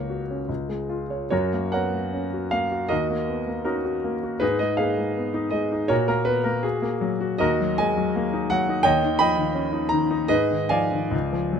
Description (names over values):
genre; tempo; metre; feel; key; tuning
classical, romantic character piece for solo piano; 68-86 BPM; 2/4; rubato; F# major; A4 = 441 Hz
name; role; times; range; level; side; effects
clear grand piano; solo; 0.0-11.6 s; C#2 to B5; -21 LUFS; equal; none
room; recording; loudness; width
little or no reverb; close, detailed microphones; -21 LUFS; side -7 dB against mid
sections
0.0-1.3 A section; 1.3-11.6 B section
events
none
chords
0.5 C#; 1.3 F#; 2.9 D#m7; 4.4 G#m; 5.9 F#/A#; 7.4 D#m; 8.8 D#7; 10.3 G#m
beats
0.49 | 1.31 2.14 | 2.91 3.66 | 4.42 5.17 | 5.90 6.63 | 7.40 8.16 | 8.85 9.55 | 10.30 11.13